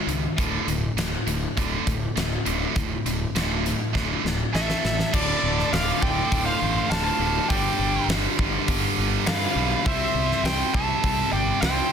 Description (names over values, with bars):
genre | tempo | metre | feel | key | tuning
hard rock | 101 BPM | 4/4 | straight | D minor | A4 = 441 Hz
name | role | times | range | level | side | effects
heavy high-gain guitar | riff | 0.0-11.9 s | D2 to C4 | -28 LUFS | right 15 dB | distortion
overdriven electric guitar | riff | 0.0-11.9 s | D2 to C4 | -30 LUFS | left 11 dB | none
fuzz fingered electric bass | bass | 0.1-11.8 s | D1 to G2 | -29 LUFS | equal | overdrive
huge arena drum kit | drums | 0.1-11.8 s | crash cymbal, hi-hat, kick drum, snare drum | -26 LUFS | equal | none
octave-fuzz lead guitar | second line | 4.5-11.9 s | A4 to F5 | -31 LUFS | right 4 dB | distortion
smooth overdriven lead guitar | melody | 4.6-11.9 s | D5 to A5 | -26 LUFS | equal | slapback echo
room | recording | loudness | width
light reverb | dense, heavily limited modern master | -21 LUFS | side -7 dB against mid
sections
0.0-5.1 A section; 5.1-11.9 B section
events
drum fill 4.0-5.1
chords
0.4 D5; 4.5 A5; 5.1 D5; 7.5 G; 9.9 C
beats
| 0.38 0.98 1.57 2.17 | 2.76 3.36 3.95 4.54 | 5.14 5.73 6.32 6.91 | 7.50 8.09 8.68 9.27 | 9.86 10.45 11.04 11.63